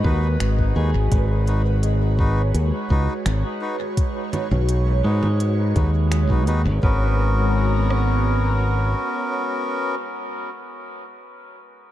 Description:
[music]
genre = ambient dub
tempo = 84 BPM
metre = 4/4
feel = straight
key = G# minor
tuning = A4 = 440 Hz
[part]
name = airy breathy pad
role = sustained chords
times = 0.0-10.4 s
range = G#3 to A#5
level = -28 LUFS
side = right 1 dB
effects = chorus, phaser
[part]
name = pedal steel guitar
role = arpeggios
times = 0.0-10.0 s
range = G#3 to B4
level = -33 LUFS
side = equal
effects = dub echo
[part]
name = melodica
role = stabs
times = 0.0-10.0 s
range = B3 to B4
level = -27 LUFS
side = left 1 dB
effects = dub echo
[part]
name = modern bright fingered electric bass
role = bass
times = 0.0-8.9 s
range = G#1 to G#2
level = -19 LUFS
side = equal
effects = none
[part]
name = organic electronic drum kit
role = drums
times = 0.0-8.1 s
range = kick drum, rim click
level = -21 LUFS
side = equal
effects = small room ambience
[part]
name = organic electronic drum kit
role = drums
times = 0.4-6.6 s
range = congas, finger snaps, hi-hat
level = -32 LUFS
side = right 2 dB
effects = small room ambience, dub echo
[sound]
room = little or no reverb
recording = echo-heavy mix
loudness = -18 LUFS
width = side -13 dB against mid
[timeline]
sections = 0.0-6.8 A section; 6.8-9.7 B section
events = none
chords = 0.0 B/G#; 6.8 G#m11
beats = 0.40 | 1.12 1.83 2.54 3.26 | 3.97 4.69 5.40 6.12 | 6.83 7.54 8.26 8.97

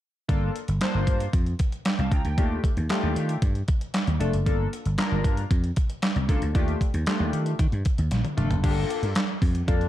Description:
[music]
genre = early-eighties boogie funk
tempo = 115 BPM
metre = 4/4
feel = straight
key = G minor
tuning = A4 = 440 Hz
[part]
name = chorused polysynth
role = accompaniment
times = 0.3-9.9 s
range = A3 to Bb5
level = -30 LUFS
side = left 3 dB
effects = none
[part]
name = vintage slap bass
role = bass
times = 0.3-9.9 s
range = F1 to Eb3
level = -25 LUFS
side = equal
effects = none
[part]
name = clean 12-bit digital drum machine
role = drums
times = 0.3-9.9 s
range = crash cymbal, handclaps, hi-hat, kick drum, snare drum, toms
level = -25 LUFS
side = equal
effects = overdrive
[sound]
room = little or no reverb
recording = dark, warm production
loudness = -22 LUFS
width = side -13 dB against mid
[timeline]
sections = 0.3-8.6 A section; 8.6-9.9 B section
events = drum fill 8.1-8.6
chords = 0.3 Gm9; 2.4 Ebmaj9#11; 4.5 Gm9; 6.6 Ebmaj9#11; 8.6 Gm9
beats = | 0.29 0.81 1.33 1.86 | 2.38 2.90 3.42 3.94 | 4.46 4.99 5.51 6.03 | 6.55 7.07 7.59 8.12 | 8.64 9.16 9.68

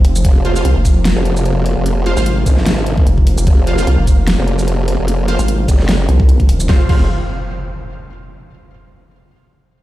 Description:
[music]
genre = heavy wobble dubstep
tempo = 149 BPM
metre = 4/4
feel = swing 55% on 16ths, half-time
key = F minor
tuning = A4 = 440 Hz
[part]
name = supersaw pad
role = sustained chords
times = 0.0-6.9 s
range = C3 to F5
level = -21 LUFS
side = equal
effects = sidechain pumping, low-pass filter
[part]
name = vowel-sweep wobble bass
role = bass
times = 0.0-6.7 s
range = Eb1 to C2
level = -13 LUFS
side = equal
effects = chorus, overdrive
[part]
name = dubstep drum kit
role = drums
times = 0.0-7.0 s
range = crash cymbal, hi-hat, shaker, snare drum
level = -22 LUFS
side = equal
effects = overdrive, studio ambience
[part]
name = formant-sweep wobble bass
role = bass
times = 0.2-7.1 s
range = F1 to Ab1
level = -16 LUFS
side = equal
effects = chorus, overdrive
[part]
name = electronic kick drum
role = drums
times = 0.2-7.0 s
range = none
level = -11 LUFS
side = equal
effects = overdrive, studio ambience
[part]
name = orchestra-hit-like synth stab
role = stabs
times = 0.4-7.0 s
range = F4 to F5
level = -25 LUFS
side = right 3 dB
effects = built-in reverb, digital delay
[part]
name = impact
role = sound effects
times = 6.7-8.3 s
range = none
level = -22 LUFS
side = equal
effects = none
[sound]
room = little or no reverb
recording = played on a big sound system in a bare room, stone room reverb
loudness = -11 LUFS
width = side -15 dB against mid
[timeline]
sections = 0.0-6.7 A section; 6.7-8.3 B section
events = drop 0.0-6.7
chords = 0.0 F5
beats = | 0.25 0.65 1.05 1.46 | 1.86 2.26 2.66 3.07 | 3.47 3.87 4.28 4.68 | 5.08 5.48 5.88 6.29 | 6.69 7.09 7.50 7.90

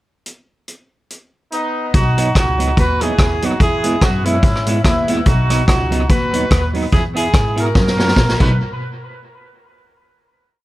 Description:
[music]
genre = ska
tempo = 145 BPM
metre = 4/4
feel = swing 57% on 8ths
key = B major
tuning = A4 = 445 Hz
[part]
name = street-band drum kit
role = drums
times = 0.3-8.5 s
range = crash cymbal, hi-hat, kick drum, rim click, snare drum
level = -16 LUFS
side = equal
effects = none
[part]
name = mellow horn section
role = melody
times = 1.5-8.6 s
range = B3 to B4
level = -20 LUFS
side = right 1 dB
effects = analog delay
[part]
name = upright bass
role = bass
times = 1.9-8.6 s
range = A#1 to G#2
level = -19 LUFS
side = equal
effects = none
[part]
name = semi-hollow electric guitar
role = accompaniment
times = 2.2-8.5 s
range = F#3 to G#4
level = -20 LUFS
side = right 3 dB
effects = lush chorus
[sound]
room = light reverb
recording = none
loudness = -13 LUFS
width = side -16 dB against mid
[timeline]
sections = 0.3-1.9 pickup bar; 1.9-8.6 head; 8.6-10.2 final hit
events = drum fill 7.8-8.6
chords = 0.3 N.C.; 1.9 B; 3.6 E; 5.3 B; 6.9 E; 7.8 F#; 8.4 B; 8.6 N.C.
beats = | 0.26 0.68 1.10 1.51 | 1.93 2.35 2.77 3.19 | 3.60 4.02 4.43 4.85 | 5.27 5.68 6.09 6.51 | 6.92 7.34 7.75 8.16

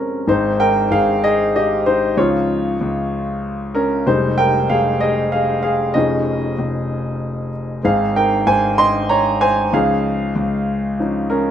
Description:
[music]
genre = six-eight pop ballad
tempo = 63 BPM (dotted quarters)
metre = 6/8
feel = straight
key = Ab major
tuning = A4 = 439 Hz
[part]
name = warm upright piano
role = accompaniment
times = 0.0-11.5 s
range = F2 to C6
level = -16 LUFS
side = equal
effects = none
[part]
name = dark concert grand piano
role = bass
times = 0.3-11.5 s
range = F1 to Db2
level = -21 LUFS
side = left 1 dB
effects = none
[sound]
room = light reverb, small room ambience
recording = rough home demo mix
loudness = -15 LUFS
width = side -9 dB against mid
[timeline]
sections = 0.3-11.5 A section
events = upright piano solo 0.3-11.5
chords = 0.3 Ab; 2.2 Dbadd9; 4.1 Fm7; 6.0 Dbadd9/F; 7.8 Ab; 9.7 Dbadd9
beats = | 0.27 1.21 | 2.16 3.11 | 4.06 5.00 | 5.95 6.90 | 7.84 8.79 | 9.74 10.68

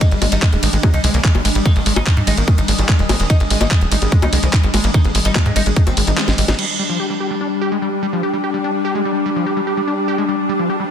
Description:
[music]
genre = psychedelic trance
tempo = 146 BPM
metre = 4/4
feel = straight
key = unclear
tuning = A4 = 440 Hz
[part]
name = oud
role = melody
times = 0.0-6.5 s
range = Eb3 to Eb4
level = -26 LUFS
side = left 2 dB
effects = phaser, sidechain pumping, ping-pong delay
[part]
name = evolving wavetable pad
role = sustained chords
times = 0.0-10.9 s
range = G3 to D4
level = -23 LUFS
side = left 2 dB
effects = ensemble chorus, built-in reverb, sidechain pumping
[part]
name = overdriven acid bass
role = riff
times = 0.0-10.8 s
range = F3 to G4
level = -24 LUFS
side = equal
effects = auto-pan, sidechain pumping, tape echo
[part]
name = electronic kick drum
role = drums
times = 0.0-5.8 s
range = none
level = -14 LUFS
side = equal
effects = small room ambience
[part]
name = garage drum kit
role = drums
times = 0.0-6.7 s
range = bongos, crash cymbal, handclaps, hi-hat, ride cymbal, snare drum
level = -21 LUFS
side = left 1 dB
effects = small room ambience
[part]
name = airy breathy pad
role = texture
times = 0.0-10.9 s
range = Eb3 to Eb6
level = -24 LUFS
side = equal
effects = chorus, sidechain pumping
[part]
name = tight sequencer bass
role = bass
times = 0.1-6.5 s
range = Eb1 to Ab2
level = -17 LUFS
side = equal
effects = none
[part]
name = formant-sweep wobble bass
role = second line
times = 1.0-5.1 s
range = Bb3 to D4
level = -34 LUFS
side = left 2 dB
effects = none
[sound]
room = light reverb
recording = dense, heavily limited modern master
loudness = -14 LUFS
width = side -8 dB against mid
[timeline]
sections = 0.0-6.6 A section; 6.6-10.9 B section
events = drop 0.0-6.6; kick drops out 6.2-6.6; drum fill 6.2-6.6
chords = 0.0 Ab5; 6.6 G5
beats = | 0.01 0.42 0.83 1.24 | 1.66 2.07 2.48 2.89 | 3.30 3.71 4.12 4.53 | 4.94 5.35 5.76 6.18 | 6.59 7.00 7.41 7.82 | 8.23 8.64 9.05 9.46 | 9.88 10.29 10.70

